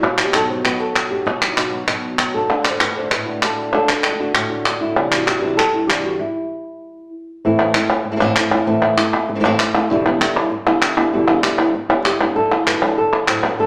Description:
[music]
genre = flamenco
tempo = 194 BPM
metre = 4/4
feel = straight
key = unclear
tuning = A4 = 440 Hz
[part]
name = flamenco guitar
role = melody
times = 0.0-13.7 s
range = E2 to C5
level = -22 LUFS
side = equal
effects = none
[part]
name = flamenco guitar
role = stabs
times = 0.0-6.2, 9.9-13.7 s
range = E2 to F#4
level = -27 LUFS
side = equal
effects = none
[part]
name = palmas hand claps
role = percussion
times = 0.0-13.6 s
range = none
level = -20 LUFS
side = equal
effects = none
[sound]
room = wet large studio reverb, RT60 0.9 s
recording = none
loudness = -18 LUFS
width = mono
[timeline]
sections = 0.0-7.4 A section; 7.4-12.4 B section; 12.4-13.7 C section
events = stop 6.2-7.4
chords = 0.0 B; 2.5 D; 5.0 Cadd9; 6.2 N.C.; 7.4 Am; 9.9 Em7; 12.4 Dadd9

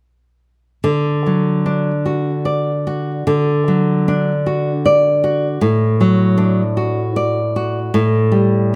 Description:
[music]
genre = classical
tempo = 76 BPM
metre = 3/4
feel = rubato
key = D major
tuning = A4 = 440 Hz
[part]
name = nylon-string guitar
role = accompaniment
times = 0.8-8.8 s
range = A2 to D5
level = -16 LUFS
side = equal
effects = none
[sound]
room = moderate recital hall reverb, RT60 1.5 s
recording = faint mains hum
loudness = -17 LUFS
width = mono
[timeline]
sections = 0.8-8.8 A section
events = none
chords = 0.8 D; 5.6 D/A; 7.9 A7(no3)

